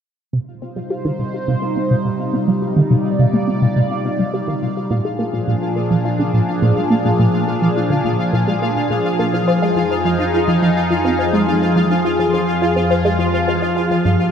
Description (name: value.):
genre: ambient, sequencer-driven space music.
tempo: 105 BPM.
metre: 4/4.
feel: straight.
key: C minor.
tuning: A4 = 441 Hz.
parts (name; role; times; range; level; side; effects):
phased analog pad; sustained chords; 0.8-14.3 s; F2 to D5; -18 LUFS; left 1 dB; phaser, chorus.
resonant blip pluck; riff; 0.3-14.1 s; G2 to C5; -18 LUFS; equal; phaser, ping-pong delay.
pulsing gated texture; texture; 0.3-14.3 s; F4 to F5; -25 LUFS; equal; chorus, built-in reverb.
room: wet plate reverb, RT60 2.7 s.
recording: echo-heavy mix.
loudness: -15 LUFS.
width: side -8 dB against mid.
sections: 0.3-14.3 A section.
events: filter sweep on synth arpeggio sound 0.3-14.3.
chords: 0.3 Cm; 4.9 Bb7; 9.5 Fm7.